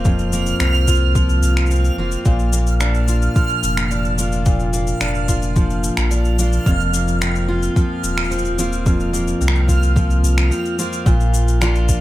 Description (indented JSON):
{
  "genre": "folktronica",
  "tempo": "109 BPM",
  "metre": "4/4",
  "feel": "straight",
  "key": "Bb major",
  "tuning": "A4 = 439 Hz",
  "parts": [
    { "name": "picked steel-string acoustic guitar", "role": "arpeggios", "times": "0.0-12.0 s", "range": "F2 to F4", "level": "-21 LUFS", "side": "equal", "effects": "ping-pong delay" },
    { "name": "warm sub bass", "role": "bass", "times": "0.0-12.0 s", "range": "Eb1 to C2", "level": "-18 LUFS", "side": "equal", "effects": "none" },
    { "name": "backwards swelling texture", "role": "texture", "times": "0.0-11.1 s", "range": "F6", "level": "-26 LUFS", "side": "right 4 dB", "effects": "built-in reverb" },
    { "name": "electronic cabasa and finger snaps", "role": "drums", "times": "0.1-12.0 s", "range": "none", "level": "-26 LUFS", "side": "left 2 dB", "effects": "none" },
    { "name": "electronic kick drum", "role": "drums", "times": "0.1-12.0 s", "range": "none", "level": "-17 LUFS", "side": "equal", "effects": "none" }
  ],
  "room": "little or no reverb",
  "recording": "none",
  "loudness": "-15 LUFS",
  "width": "side -15 dB against mid",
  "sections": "0.0-11.1 A section",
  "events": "break 10.5-11.1",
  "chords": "0.0 Fsus4; 2.3 Bb; 6.7 Fsus4; 11.1 Bb",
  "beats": "| 0.06 0.61 1.16 1.71 | 2.26 2.81 3.36 3.91 | 4.46 5.01 5.56 6.11 | 6.66 7.21 7.76 8.31 | 8.86 9.41 9.96 10.52 | 11.07 11.62"
}